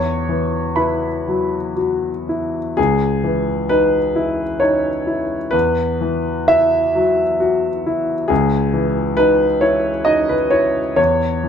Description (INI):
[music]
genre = neoclassical minimalist piano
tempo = 66 BPM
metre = 3/4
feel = uneven beats, rubato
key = C# minor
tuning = A4 = 440 Hz
[part]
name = clear grand piano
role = solo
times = 0.0-11.5 s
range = C#2 to C#6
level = -15 LUFS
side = left 1 dB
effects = none
[sound]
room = moderate studio reverb, RT60 0.6 s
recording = none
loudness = -15 LUFS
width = side -8 dB against mid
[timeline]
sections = 0.0-2.8 A section; 2.8-11.5 A section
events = none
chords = 0.0 Esus2; 2.8 C#madd9; 5.5 Esus2; 8.3 C#madd9; 11.0 N.C.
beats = 0.78 1.78 | 2.77 3.70 4.61 | 5.54 6.51 7.41 | 8.30 9.18 10.08 | 10.98